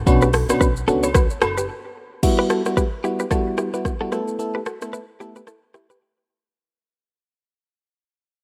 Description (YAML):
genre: afrobeats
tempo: 111 BPM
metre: 4/4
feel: swing 58% on 16ths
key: E dorian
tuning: A4 = 440 Hz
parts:
  - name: upright bass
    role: bass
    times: 0.0-1.7 s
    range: F#1 to C#2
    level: -27 LUFS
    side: equal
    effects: none
  - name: FM electric piano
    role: accompaniment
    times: 0.1-5.4 s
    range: G3 to A4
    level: -25 LUFS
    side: equal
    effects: chorus
  - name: afro-pop drum kit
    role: drums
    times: 0.1-6.0 s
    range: crash cymbal, hi-hat, kick drum, rim click, shaker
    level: -23 LUFS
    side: equal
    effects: none
  - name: agogo bells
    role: percussion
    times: 0.1-1.6 s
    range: none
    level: -33 LUFS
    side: equal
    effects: none
  - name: direct-recorded clean electric guitar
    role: riff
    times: 0.2-6.0 s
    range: E4 to C#5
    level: -27 LUFS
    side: equal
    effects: tape echo
room: light reverb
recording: rough home demo mix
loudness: -21 LUFS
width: mono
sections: 0.0-2.2 A section; 2.2-6.6 B section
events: break 1.7-2.2, 6.0-6.6; fade-out 2.2-6.6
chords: 0.1 Bmadd9; 2.2 Emadd9; 4.1 Asus2